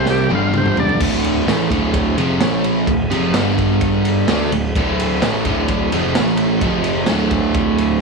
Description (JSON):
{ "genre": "garage rock duo or trio", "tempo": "128 BPM", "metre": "4/4", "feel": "straight", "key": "D minor", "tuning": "A4 = 441 Hz", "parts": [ { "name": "overdriven combo organ", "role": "melody", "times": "0.0-1.0 s", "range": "G4 to F5", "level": "-22 LUFS", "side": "equal", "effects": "analog delay" }, { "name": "crunchy overdriven guitar", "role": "riff", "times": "0.0-8.0 s", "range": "D2 to D4", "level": "-16 LUFS", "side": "right 1 dB", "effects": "none" }, { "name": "fuzz picked electric bass", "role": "bass", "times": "0.0-8.0 s", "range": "D1 to D2", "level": "-23 LUFS", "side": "right 1 dB", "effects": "overdrive, tube saturation" }, { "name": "raw garage drum kit", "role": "drums", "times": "0.1-7.9 s", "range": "crash cymbal, kick drum, ride cymbal, snare drum, toms", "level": "-21 LUFS", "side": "right 1 dB", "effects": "none" } ], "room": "small room ambience", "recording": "none", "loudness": "-14 LUFS", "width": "side -3 dB against mid", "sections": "0.0-1.0 A section; 1.0-8.0 B section", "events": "transistor combo organ solo 0.0-1.0; drum fill 0.1-1.0", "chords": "0.3 G5; 1.0 Dm; 2.4 A5; 2.9 Dm; 3.3 G5; 4.3 Dm; 6.1 A5; 6.6 F5; 7.1 D5", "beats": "0.07 0.54 | 1.00 1.47 1.94 2.41 | 2.88 3.34 3.81 4.28 | 4.75 5.21 5.68 6.14 | 6.61 7.08 7.55" }